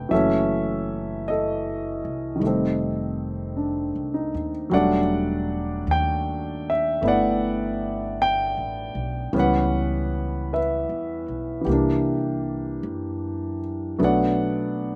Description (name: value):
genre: jazz ballad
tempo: 52 BPM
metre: 4/4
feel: swing 68% on 8ths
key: unclear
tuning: A4 = 440 Hz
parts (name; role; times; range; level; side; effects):
- warm concert grand piano; accompaniment; 0.0-15.0 s; Eb3 to G5; -25 LUFS; equal; none
- upright bass; bass; 0.0-15.0 s; E1 to F#2; -32 LUFS; equal; none
room: little or no reverb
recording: recorded outdoors, with no room sound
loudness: -24 LUFS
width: mono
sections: 0.0-15.0 A section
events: none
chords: 0.1 F#m7; 2.4 F9; 4.7 Em11; 9.3 C#m7b5; 11.7 C9; 14.0 Bm7